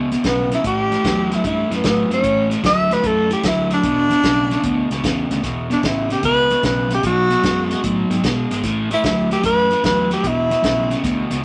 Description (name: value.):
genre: electric blues shuffle.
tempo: 150 BPM.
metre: 4/4.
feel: swing 68% on 8ths.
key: unclear.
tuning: A4 = 437 Hz.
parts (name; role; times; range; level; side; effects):
crunchy overdriven guitar; riff; 0.0-11.4 s; E2 to G#3; -23 LUFS; equal; spring reverb.
fingered electric bass; bass; 0.0-11.4 s; E1 to B2; -28 LUFS; equal; none.
warm soul drum kit; drums; 0.1-11.4 s; hi-hat, kick drum, snare drum; -27 LUFS; equal; none.
breathy tenor saxophone; melody; 0.3-11.0 s; B3 to E5; -20 LUFS; equal; none.
room: moderate studio reverb, RT60 0.9 s.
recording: none.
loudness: -18 LUFS.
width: mono.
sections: 0.0-11.4 A section.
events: none.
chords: 0.0 E5; 0.6 A7(no3); 3.8 E5; 7.0 B5; 8.6 Asus2; 10.2 E7(no3).